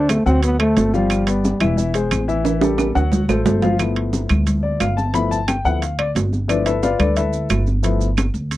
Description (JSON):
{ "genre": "Afro-Cuban jazz", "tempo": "178 BPM", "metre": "4/4", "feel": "straight", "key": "G mixolydian", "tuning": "A4 = 440 Hz", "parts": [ { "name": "mellow trombone", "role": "melody", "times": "0.0-1.9 s", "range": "G3 to D4", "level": "-18 LUFS", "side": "equal", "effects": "none" }, { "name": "warm upright piano", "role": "accompaniment", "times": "0.0-8.1 s", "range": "E3 to B5", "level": "-21 LUFS", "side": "left 4 dB", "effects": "none" }, { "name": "upright bass", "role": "bass", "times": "0.0-8.6 s", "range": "E1 to D2", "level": "-20 LUFS", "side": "right 1 dB", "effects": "none" }, { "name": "claves", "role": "percussion", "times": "0.1-8.3 s", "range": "none", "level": "-30 LUFS", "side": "right 4 dB", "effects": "none" }, { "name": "congas", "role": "percussion", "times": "0.1-8.6 s", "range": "none", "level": "-24 LUFS", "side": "equal", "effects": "none" }, { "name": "maracas", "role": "percussion", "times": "0.1-8.6 s", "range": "none", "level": "-36 LUFS", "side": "right 13 dB", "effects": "none" }, { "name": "timbales", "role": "percussion", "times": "0.1-8.6 s", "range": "none", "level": "-22 LUFS", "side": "right 6 dB", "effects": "none" } ], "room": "little or no reverb", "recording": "dry, close 1970s-style studio recording", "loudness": "-16 LUFS", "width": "side -15 dB against mid", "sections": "0.0-3.8 A section; 3.8-8.6 B section", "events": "drum fill 2.5-3.8; upright piano solo 3.8-8.6", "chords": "0.0 D7; 1.1 G6; 1.8 Eaug; 2.5 A5; 3.1 D7; 3.8 G13", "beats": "0.10 0.43 0.77 | 1.10 1.44 1.78 2.12 | 2.45 2.79 3.12 3.46 | 3.80 4.13 4.47 4.81 | 5.14 5.48 5.82 6.15 | 6.49 6.83 7.16 7.50 | 7.84 8.17 8.51" }